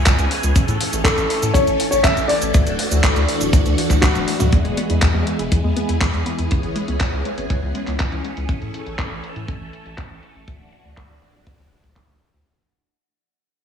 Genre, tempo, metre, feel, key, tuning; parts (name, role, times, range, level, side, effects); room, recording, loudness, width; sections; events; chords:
italo disco; 121 BPM; 4/4; straight; A4 = 440 Hz
dark concert grand piano; melody; 0.0-4.5 s; F#4 to E5; -22 LUFS; left 3 dB; tape echo
phased string machine; sustained chords; 0.0-12.4 s; E3 to A4; -24 LUFS; right 1 dB; ensemble chorus, phaser
round analog bass; bass; 0.0-12.4 s; D1 to A2; -22 LUFS; equal
gated 80s digital drum machine; drums; 0.1-12.4 s; cabasa, handclaps, hi-hat, toms; -23 LUFS; equal; gated reverb, overdrive, low-pass filter on snare, low-pass filter on hats, low-pass filter on perc, low-pass filter on toms
kick drum; drums; 0.1-12.1 s; -18 LUFS; equal
wide unison pluck; arpeggios; 4.5-8.4 s; C#3 to E4; -29 LUFS; left 2 dB; tape echo
small room ambience; -16 LUFS; side -8 dB against mid
0.0-4.5 A section; 4.5-12.5 B section
drum fill 4.0-4.5; fade-out 4.5-12.5; filter sweep on drum 4.5-12.5
0.0 C#m7; 0.6 A; 2.5 Dadd9; 4.5 E; 6.5 C#m7; 8.5 A; 10.5 Dadd9